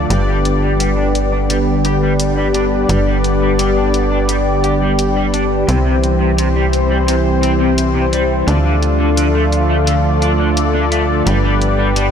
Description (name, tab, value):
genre	synthwave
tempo	86 BPM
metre	4/4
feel	straight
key	unclear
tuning	A4 = 439 Hz
part	lush unison pad	sustained chords	0.0-12.1 s	D3 to G4	-17 LUFS	equal	chorus, vintage 12-bit sampler grit
part	analog synth brass	stabs	0.0-12.1 s	C4 to D5	-19 LUFS	left 3 dB	chorus, tape echo, slapback echo
part	tight sequencer bass	bass	0.0-12.1 s	G1 to D2	-17 LUFS	equal	none
part	crunchy overdriven guitar	riff	0.1-12.1 s	C3 to G4	-23 LUFS	left 2 dB	lush chorus, low-pass filter, ping-pong delay
part	electronic hi-hat	drums	0.1-12.1 s	none	-26 LUFS	left 1 dB	none
room	moderate lush hall reverb, RT60 3.0 s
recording	big arena sound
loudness	-12 LUFS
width	side -8 dB against mid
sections	0.0-12.1 A section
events	filter sweep on analog synth pad 0.0-12.1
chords	0.1 G; 5.7 C; 8.5 Dm; 11.3 G